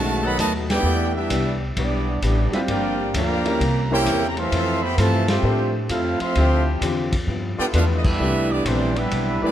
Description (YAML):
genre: jazz, big band swing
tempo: 130 BPM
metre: 4/4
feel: swing 67% on 8ths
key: C major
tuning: A4 = 440 Hz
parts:
  - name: bright trumpet section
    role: melody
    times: 0.0-9.5 s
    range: G3 to C6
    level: -25 LUFS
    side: right 1 dB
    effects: none
  - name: clear trombone section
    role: second line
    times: 0.0-9.5 s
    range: C3 to G4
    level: -26 LUFS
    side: right 3 dB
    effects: none
  - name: archtop guitar, miked and amplified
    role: accompaniment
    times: 0.0-9.5 s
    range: G2 to A4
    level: -29 LUFS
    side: left 4 dB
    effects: none
  - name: warm concert grand piano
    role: accompaniment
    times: 0.0-9.5 s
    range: D#3 to C5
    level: -28 LUFS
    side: left 1 dB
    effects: none
  - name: upright bass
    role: bass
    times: 0.0-9.5 s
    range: G1 to A2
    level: -23 LUFS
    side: equal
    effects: none
  - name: clear trombone section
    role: sustained chords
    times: 0.2-0.8, 3.9-9.5 s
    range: E3 to B4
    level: -32 LUFS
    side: left 2 dB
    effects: none
  - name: vintage drum kit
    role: drums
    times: 0.4-9.3 s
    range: crash cymbal, hi-hat, kick drum, ride cymbal, snare drum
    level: -29 LUFS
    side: equal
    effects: none
room: moderate concert hall reverb, RT60 1.9 s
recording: none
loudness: -18 LUFS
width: side -11 dB against mid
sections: 0.0-9.5 A section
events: band accent 0.6, 5.2, 8.0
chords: 0.0 B7; 0.8 Em7; 2.7 Gm7; 3.6 C7b9; 4.5 Fmaj7; 6.4 Dm11; 7.3 G13; 8.2 Cmaj9